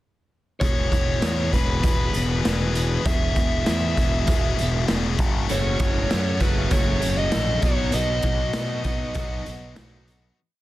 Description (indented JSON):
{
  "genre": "indie rock",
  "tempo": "98 BPM",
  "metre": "4/4",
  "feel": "straight",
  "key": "E major",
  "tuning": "A4 = 439 Hz",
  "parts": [
    { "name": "smooth overdriven lead guitar", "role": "melody", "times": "0.6-9.7 s", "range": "B4 to E5", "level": "-28 LUFS", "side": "equal", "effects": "tape echo" },
    { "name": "high-gain distorted guitar", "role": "riff", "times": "0.6-10.4 s", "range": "E2 to G#4", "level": "-28 LUFS", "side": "left 7 dB", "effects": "distortion" },
    { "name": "fuzz fingered electric bass", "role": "bass", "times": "0.6-10.3 s", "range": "E1 to B2", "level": "-26 LUFS", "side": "equal", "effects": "overdrive" },
    { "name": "raw garage drum kit", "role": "drums", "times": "0.6-10.2 s", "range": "hi-hat, kick drum, snare drum", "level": "-24 LUFS", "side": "equal", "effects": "none" },
    { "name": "crunchy overdriven guitar", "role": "riff", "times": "5.5-10.4 s", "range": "F#2 to F#4", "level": "-31 LUFS", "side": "right 6 dB", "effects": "analog chorus, tape echo" }
  ],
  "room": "small room ambience",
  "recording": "dense, heavily limited modern master",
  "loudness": "-20 LUFS",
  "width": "side -16 dB against mid",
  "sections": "0.6-10.4 verse",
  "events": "fade-out 7.9-10.4",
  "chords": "0.6 E; 5.2 F#m; 7.6 B",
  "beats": "| 0.61 1.23 1.84 2.45 | 3.06 3.67 4.28 4.89 | 5.50 6.11 6.72 7.33 | 7.94 8.55 9.17 9.78"
}